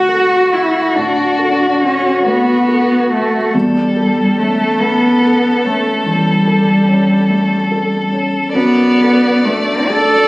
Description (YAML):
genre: classical, slow romantic movement for piano trio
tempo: 47 BPM (dotted quarters)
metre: 12/8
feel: rubato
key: D major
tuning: A4 = 439 Hz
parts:
  - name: rich violin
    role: melody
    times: 0.0-10.3 s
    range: F#4 to D5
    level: -17 LUFS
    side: left 1 dB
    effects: none
  - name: warm cello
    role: second line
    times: 0.0-10.3 s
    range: G3 to A4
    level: -13 LUFS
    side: equal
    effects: none
  - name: dark grand piano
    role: accompaniment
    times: 0.0-10.3 s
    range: D2 to A4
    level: -18 LUFS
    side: equal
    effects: none
room: wet recital hall reverb, RT60 1.4 s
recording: recorded on a phone in the room, club reverb, compression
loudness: -11 LUFS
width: side -21 dB against mid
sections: 0.0-10.3 A section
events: none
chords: 0.0 D; 3.5 A7/E; 8.5 D/F#